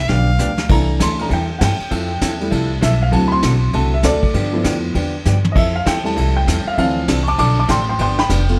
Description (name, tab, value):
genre	country, western swing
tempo	198 BPM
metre	4/4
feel	swing 63% on 8ths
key	C major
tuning	A4 = 441 Hz
part	clear fiddle	melody	0.0-0.6 s	E5 to F5	-26 LUFS	equal	none
part	upright bass	bass	0.0-8.6 s	F1 to G2	-21 LUFS	equal	none
part	vintage hollow-body jazz guitar	accompaniment	0.1-8.4 s	C3 to A4	-26 LUFS	equal	none
part	vintage brush drum kit	drums	0.1-8.5 s	brushed snare drum, crash cymbal, hi-hat, kick drum, ride cymbal, snare drum, toms	-24 LUFS	equal	none
part	warm upright piano	accompaniment	0.7-8.6 s	E3 to D6	-22 LUFS	equal	none
room	light reverb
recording	none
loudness	-17 LUFS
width	mono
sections	0.7-8.6 A section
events	drum fill 0.4-0.7, 5.3-5.6; upright piano solo 0.7-8.6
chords	0.0 G7; 0.7 C6; 1.9 Fmaj7; 3.1 D7; 4.3 G13; 5.6 Fmaj7; 6.8 Dm9; 8.0 G7